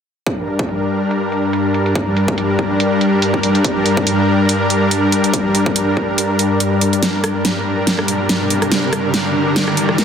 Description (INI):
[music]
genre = heavy wobble dubstep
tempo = 142 BPM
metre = 4/4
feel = swing 55% on 16ths, half-time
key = G minor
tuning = A4 = 440 Hz
[part]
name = supersaw pad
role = sustained chords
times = 0.3-10.0 s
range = G2 to Bb4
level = -15 LUFS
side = left 1 dB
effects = sidechain pumping
[part]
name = dubstep drum kit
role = drums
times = 0.3-10.0 s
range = hi-hat, rim click, snare drum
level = -18 LUFS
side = right 1 dB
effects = low-pass filter on hats, low-pass filter on snare
[part]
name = electronic kick drum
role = drums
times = 0.3-6.1 s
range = none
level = -21 LUFS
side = equal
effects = high-pass filter on kick, high-pass filter on room
[part]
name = riser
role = sound effects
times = 7.8-10.0 s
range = none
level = -23 LUFS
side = equal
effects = none
[sound]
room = wet lush hall reverb, RT60 1.9 s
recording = dense, heavily limited modern master, high-pass filter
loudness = -14 LUFS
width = side -7 dB against mid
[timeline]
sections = 0.3-7.0 A section; 7.0-10.0 B section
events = kick drops out 6.6-7.0; build-up 7.0-10.0; drum fill 7.0-10.0; riser 7.8-10.0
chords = 0.3 Gm